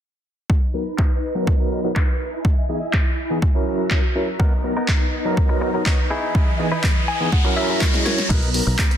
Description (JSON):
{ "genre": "filtered disco house", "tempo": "123 BPM", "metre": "4/4", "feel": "straight", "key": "B major", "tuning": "A4 = 440 Hz", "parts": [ { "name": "phased string machine", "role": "sustained chords", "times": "0.5-9.0 s", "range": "E3 to A#5", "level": "-27 LUFS", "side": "equal", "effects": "ensemble chorus, phaser, sidechain pumping, low-pass filter" }, { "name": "electronic kick drum", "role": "drums", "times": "0.5-8.9 s", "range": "none", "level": "-19 LUFS", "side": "equal", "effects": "overdrive" }, { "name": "overdriven tine electric piano", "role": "accompaniment", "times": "0.7-8.6 s", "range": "E3 to A#4", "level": "-24 LUFS", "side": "equal", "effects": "fast tremolo, phaser, sidechain pumping, low-pass filter" }, { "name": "punchy analog drum machine", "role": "drums", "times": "1.0-9.0 s", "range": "crash cymbal, handclaps, hi-hat, snare drum", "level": "-26 LUFS", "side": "equal", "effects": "overdrive, low-pass filter on snare, sidechain pumping on hats, low-pass filter on hats, sidechain pumping on cymbals, low-pass filter on cymbals, low-pass filter on room" }, { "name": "direct-recorded clean electric guitar", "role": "riff", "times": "4.4-8.9 s", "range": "B3 to G#5", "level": "-28 LUFS", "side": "left 2 dB", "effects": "spring reverb, sidechain pumping, low-pass filter" }, { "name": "riser", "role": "sound effects", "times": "6.0-8.3 s", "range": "none", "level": "-27 LUFS", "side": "equal", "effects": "none" }, { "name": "fingered electric bass", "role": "bass", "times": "8.3-8.7 s", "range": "B1", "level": "-22 LUFS", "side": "equal", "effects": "sidechain pumping, low-pass filter" } ], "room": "light reverb, digital ambience", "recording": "dense, heavily limited modern master", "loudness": "-17 LUFS", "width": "side -10 dB against mid", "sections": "0.5-8.3 A section", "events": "filter sweep on drum 0.5-8.3; filter sweep 0.5-8.3; riser 6.0-8.3; clean electric guitar fill 6.8-8.3; drum fill 7.8-8.3", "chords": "0.5 Bmaj7; 2.2 Emaj7; 3.4 F#7; 4.4 Bmaj7; 6.1 Emaj7; 7.3 F#7; 8.3 Bmaj7", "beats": "| 0.50 0.98 1.47 1.96 | 2.45 2.94 3.42 3.91 | 4.40 4.89 5.38 5.86 | 6.35 6.84 7.33 7.81 | 8.30 8.79" }